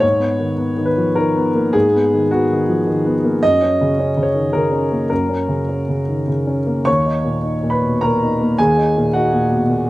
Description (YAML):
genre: neoclassical minimalist piano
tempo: 106 BPM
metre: 3/4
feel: rubato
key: Eb minor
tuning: A4 = 439 Hz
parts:
  - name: dark grand piano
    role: solo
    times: 0.0-9.9 s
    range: Eb2 to Db6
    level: -14 LUFS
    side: equal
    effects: slapback echo
room: little or no reverb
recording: recorded outdoors, with no room sound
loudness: -15 LUFS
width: side -17 dB against mid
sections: 0.0-6.9 A section; 6.9-9.9 A section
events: none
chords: 0.0 Abmadd9; 3.4 Gb; 6.9 Ebm